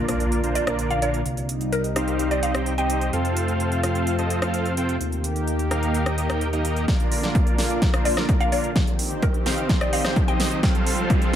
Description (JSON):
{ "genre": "EDM, festival progressive house", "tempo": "128 BPM", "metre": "4/4", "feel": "straight", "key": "Bb major", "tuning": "A4 = 440 Hz", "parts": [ { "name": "lush unison pad", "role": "sustained chords", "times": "0.0-11.4 s", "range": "C3 to A4", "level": "-28 LUFS", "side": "equal", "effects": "chorus, sidechain pumping" }, { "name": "dense compressed supersaw", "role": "riff", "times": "0.0-11.4 s", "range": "Bb3 to G5", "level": "-27 LUFS", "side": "right 1 dB", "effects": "cassette tape, sidechain pumping, low-pass filter, tape echo" }, { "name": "fat analog bass", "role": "bass", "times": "0.0-6.9 s", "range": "Bb1 to F2", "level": "-26 LUFS", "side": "equal", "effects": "sidechain pumping" }, { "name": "impact and riser", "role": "sound effects", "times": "0.0-1.3, 8.5-11.4 s", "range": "none", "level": "-32 LUFS", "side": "right 1 dB", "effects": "none" }, { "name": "big-room dance drum kit", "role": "drums", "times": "0.1-11.4 s", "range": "hi-hat, rim click, snare drum", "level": "-29 LUFS", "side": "equal", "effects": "none" }, { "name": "mallet-like synth pluck", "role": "melody", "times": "0.6-3.2, 8.1-10.7 s", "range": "Bb4 to G5", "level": "-28 LUFS", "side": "equal", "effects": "lush chorus, tape echo" }, { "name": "electronic kick drum", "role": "drums", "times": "6.9-11.2 s", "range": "none", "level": "-21 LUFS", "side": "equal", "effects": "overdrive" } ], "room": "light reverb, digital ambience", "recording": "none", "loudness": "-20 LUFS", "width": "side -10 dB against mid", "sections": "0.0-6.9 A section; 6.9-11.4 B section", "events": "impact 0.0-1.3; filter sweep on analog synth pad 0.0-6.9; build-up 6.9-11.4; drum fill 6.9-11.4; filter sweep on supersaw synth 6.9-11.4; riser 8.5-11.4", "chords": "0.0 Bb; 1.3 Cm; 3.1 F; 5.0 Eb; 6.9 Bb; 8.8 Cm; 10.6 F" }